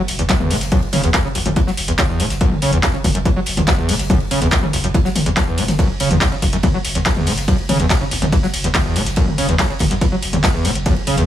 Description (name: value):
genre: driving peak-time techno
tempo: 142 BPM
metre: 4/4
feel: straight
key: F# minor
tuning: A4 = 440 Hz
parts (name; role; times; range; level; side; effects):
- impact; sound effects; 0.0-0.7 s; none; barely audible; none; none
- saturated sub bass; bass; 0.1-11.3 s; F#1; -24 LUFS; equal; overdrive, sidechain pumping, low-pass filter
- crisp fusion drum kit; drums; 0.1-11.3 s; hi-hat, ride cymbal, snare drum; -31 LUFS; right 2 dB; sidechain pumping on cymbals, high-pass filter on cymbals, sidechain pumping on hats, high-pass filter on hats, high-pass filter on snare, high-pass filter on room
- techno drum kit; drums; 0.1-11.3 s; handclaps, hi-hat, ride cymbal, toms; -20 LUFS; equal; sidechain pumping on hats, sidechain pumping on toms, sidechain pumping on cymbals
- screaming distorted acid line; riff; 0.2-11.2 s; F#1 to F#3; -20 LUFS; equal; distortion, analog chorus, sidechain pumping, tape echo
- electronic kick drum; drums; 0.3-10.9 s; none; -18 LUFS; equal; none
room: light reverb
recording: none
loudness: -14 LUFS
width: side -11 dB against mid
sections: 0.0-11.3 A section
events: impact 0.0-0.7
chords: none